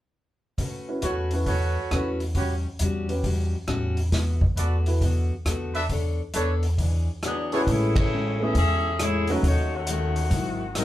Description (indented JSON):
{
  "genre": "jazz, big band swing",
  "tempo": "136 BPM",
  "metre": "4/4",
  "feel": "swing 66% on 8ths",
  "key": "A major",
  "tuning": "A4 = 440 Hz",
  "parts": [
    { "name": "picked plugged-in steel-string acoustic guitar", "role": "accompaniment", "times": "0.6-10.8 s", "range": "G#2 to C#5", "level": "-31 LUFS", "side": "left 2 dB", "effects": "none" },
    { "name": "vintage drum kit", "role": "drums", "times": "0.6-10.8 s", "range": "hi-hat, kick drum, ride cymbal, rim click, snare drum", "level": "-28 LUFS", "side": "equal", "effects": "none" },
    { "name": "warm grand piano", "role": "accompaniment", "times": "0.9-9.4 s", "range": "A2 to B4", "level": "-28 LUFS", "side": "equal", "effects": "none" },
    { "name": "warm trumpet section", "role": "stabs", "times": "1.0-7.6 s", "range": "D4 to E5", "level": "-30 LUFS", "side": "right 3 dB", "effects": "none" },
    { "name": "upright bass", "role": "bass", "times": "1.0-10.8 s", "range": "G#1 to E2", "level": "-25 LUFS", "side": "equal", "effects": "none" },
    { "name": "mellow saxophone section", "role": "melody", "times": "7.2-10.8 s", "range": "D#3 to E5", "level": "-27 LUFS", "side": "left 2 dB", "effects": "none" }
  ],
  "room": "moderate studio reverb, RT60 0.5 s",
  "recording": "band playing live in one room",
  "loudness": "-22 LUFS",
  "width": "side -14 dB against mid",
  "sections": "0.6-7.7 A section; 7.7-10.8 B section",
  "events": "band accent 7.9",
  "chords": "0.6 A69; 2.4 A13; 4.1 D6; 5.9 Bm9; 6.8 E13; 7.7 Amaj7; 9.4 D#m7b5; 10.3 G#7b13"
}